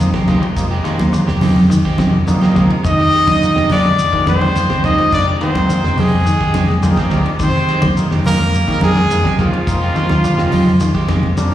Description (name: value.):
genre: afrobeat.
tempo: 105 BPM.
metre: 4/4.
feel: straight.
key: F dorian.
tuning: A4 = 439 Hz.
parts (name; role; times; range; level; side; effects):
overdriven combo organ; accompaniment; 0.0-11.5 s; F3 to G5; -22 LUFS; left 1 dB; slapback echo.
electric guitar at the edge of break-up; arpeggios; 0.0-11.5 s; C3 to F3; -22 LUFS; left 4 dB; spring reverb, slapback echo.
fingered electric bass; bass; 0.0-11.5 s; F1 to F2; -16 LUFS; equal; none.
shekere; percussion; 0.0-11.5 s; none; -25 LUFS; right 1 dB; none.
electric guitar at the edge of break-up; stabs; 0.1-11.5 s; Eb3 to G4; -23 LUFS; right 6 dB; slapback echo.
damped 70s drum kit; drums; 0.1-11.5 s; hi-hat, kick drum, ride cymbal, snare drum; -23 LUFS; equal; none.
congas; percussion; 0.1-11.5 s; none; -19 LUFS; right 1 dB; slapback echo.
clear trumpet; melody; 2.9-11.4 s; F4 to Eb5; -17 LUFS; left 2 dB; slapback echo.
breathy alto saxophone; second line; 2.9-11.3 s; F3 to Eb4; -23 LUFS; right 3 dB; slapback echo.
room: light reverb.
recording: live gig heard through the venue's PA, recital hall reverb, studio reverb.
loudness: -12 LUFS.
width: side -12 dB against mid.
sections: 0.0-11.5 A section.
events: transistor combo organ fill 6.5-7.4; drum fill 11.4.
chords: 0.0 Fm9.